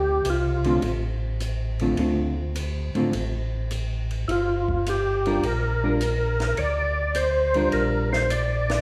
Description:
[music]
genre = soul jazz organ trio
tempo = 104 BPM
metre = 4/4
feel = swing 69% on 8ths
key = D minor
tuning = A4 = 440 Hz
[part]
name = percussive tonewheel organ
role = melody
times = 0.0-0.8, 4.3-8.8 s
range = E4 to D5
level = -26 LUFS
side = equal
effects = slow rotary speaker, overdrive, chorus vibrato
[part]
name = mellow tonewheel organ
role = bass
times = 0.0-8.8 s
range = G1 to A2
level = -29 LUFS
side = equal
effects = chorus vibrato, slow rotary speaker
[part]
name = compact cocktail drum kit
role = drums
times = 0.2-8.8 s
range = hi-hat, kick drum, ride cymbal, snare drum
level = -37 LUFS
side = equal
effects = none
[part]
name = hollow-body jazz guitar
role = accompaniment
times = 0.7-8.3 s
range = D3 to Bb4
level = -28 LUFS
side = equal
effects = none
[sound]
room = wet recital hall reverb, RT60 1.3 s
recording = recorded in a church or concert hall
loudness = -24 LUFS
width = mono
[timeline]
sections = 0.0-8.8 A section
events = none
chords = 0.0 Dm7; 4.3 Gm7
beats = 0.26 0.83 1.41 | 1.99 2.56 3.14 3.71 | 4.29 4.86 5.44 6.01 | 6.58 7.16 7.73 8.31

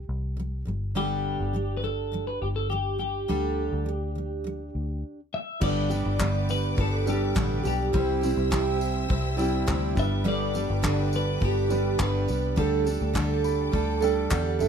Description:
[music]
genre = acoustic pop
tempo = 103 BPM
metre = 4/4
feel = straight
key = G major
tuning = A4 = 440 Hz
[part]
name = picked steel-string acoustic guitar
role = accompaniment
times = 0.0-14.7 s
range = G2 to A4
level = -29 LUFS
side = right 4 dB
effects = none
[part]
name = vintage muted fingered electric bass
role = bass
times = 0.0-14.7 s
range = F#1 to E2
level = -29 LUFS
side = left 1 dB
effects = none
[part]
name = twelve-string electric guitar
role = melody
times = 1.0-13.1 s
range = G4 to E5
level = -30 LUFS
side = left 1 dB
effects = none
[part]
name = warm upright piano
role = accompaniment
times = 5.6-14.7 s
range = G3 to B5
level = -34 LUFS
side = equal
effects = none
[part]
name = warm studio string section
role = sustained chords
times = 5.6-14.7 s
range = G4 to E6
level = -38 LUFS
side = left 4 dB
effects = none
[part]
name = loose indie drum kit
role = drums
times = 5.6-14.7 s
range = crash cymbal, handclaps, kick drum, tambourine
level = -30 LUFS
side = left 1 dB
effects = none
[sound]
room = little or no reverb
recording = close, detailed microphones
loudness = -24 LUFS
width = side -7 dB against mid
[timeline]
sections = 0.0-5.6 A section; 5.6-14.7 B section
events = stop 5.0-5.6; upright piano fill 13.2-14.7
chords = 0.0 C5; 0.7 G; 3.3 Dsus4; 5.6 G; 7.9 C; 10.0 G; 12.6 Dsus4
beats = 0.38 | 0.96 1.54 2.13 2.71 | 3.29 3.87 4.45 5.04 | 5.62 6.20 6.78 7.36 | 7.94 8.52 9.10 9.68 | 10.26 10.84 11.42 12.00 | 12.58 13.15 13.73 14.31

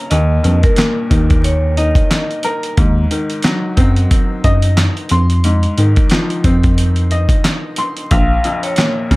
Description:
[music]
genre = hip hop, boom-bap hip-hop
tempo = 90 BPM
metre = 4/4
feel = swing 57% on 16ths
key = unclear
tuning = A4 = 438 Hz
[part]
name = clear upright piano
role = accompaniment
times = 0.0-9.2 s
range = Bb1 to C6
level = -19 LUFS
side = left 1 dB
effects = high-pass filter, low-pass filter, analog delay
[part]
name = vibraphone with hard mallets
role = melody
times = 0.1-2.1, 8.1-8.9 s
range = Bb4 to F5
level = -21 LUFS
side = equal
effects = high-pass filter, low-pass filter, analog delay
[part]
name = mellow tine electric piano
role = bass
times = 0.1-9.2 s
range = Bb1 to Ab2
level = -14 LUFS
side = equal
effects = medium stereo tremolo
[part]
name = dusty soul sampler-style drum kit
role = drums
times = 0.1-9.2 s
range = handclaps, hi-hat, kick drum, snare drum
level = -15 LUFS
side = equal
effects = none
[sound]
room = digital ambience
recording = echo-heavy mix, vinyl crackle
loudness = -12 LUFS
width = side -21 dB against mid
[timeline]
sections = 0.0-9.2 A section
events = none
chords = 0.1 Eb; 2.8 Ab7/Eb; 5.1 Fm7; 8.1 Bbm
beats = | 0.11 0.78 1.45 2.11 | 2.78 3.44 4.11 4.78 | 5.45 6.11 6.78 7.45 | 8.11 8.78

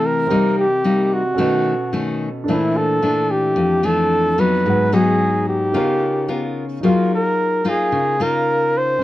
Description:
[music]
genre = bossa nova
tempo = 110 BPM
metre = 4/4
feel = straight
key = unclear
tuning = A4 = 439 Hz
[part]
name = warm flugelhorn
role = melody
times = 0.0-9.0 s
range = E4 to C5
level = -18 LUFS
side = right 1 dB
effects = none
[part]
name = nylon-string guitar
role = accompaniment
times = 0.0-9.0 s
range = F2 to Bb4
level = -19 LUFS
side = left 3 dB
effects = none
[part]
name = warm concert grand piano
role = accompaniment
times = 0.0-9.0 s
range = Bb3 to Gb5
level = -27 LUFS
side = right 3 dB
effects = none
[sound]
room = light reverb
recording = dark, warm production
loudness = -16 LUFS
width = side -15 dB against mid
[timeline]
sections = 0.0-9.0 A section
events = none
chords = 0.3 Cm7; 1.4 B9; 2.5 Bbmaj9#11; 4.7 Abm7; 5.7 Db13; 6.8 Gbmaj13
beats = | 0.29 0.84 1.39 1.93 | 2.47 3.02 3.56 4.11 | 4.65 5.20 5.75 6.29 | 6.84 7.38 7.93 8.47 | 9.02

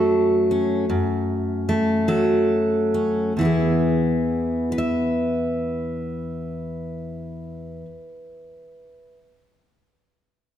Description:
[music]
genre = folk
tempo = 44-54 BPM (dotted quarters)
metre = 6/8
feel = straight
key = E major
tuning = A4 = 440 Hz
[part]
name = fingerpicked steel-string acoustic guitar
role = accompaniment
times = 0.0-9.2 s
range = E2 to E5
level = -20 LUFS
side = equal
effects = none
[sound]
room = wet scoring stage reverb, RT60 1.5 s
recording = none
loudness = -20 LUFS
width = side -10 dB against mid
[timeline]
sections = 0.0-3.4 A section; 3.4-8.8 B section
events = slowing down 0.0-3.4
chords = 0.0 F#m; 3.4 E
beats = | 0.89 2.08 | 3.37 4.72 | 6.07 7.42

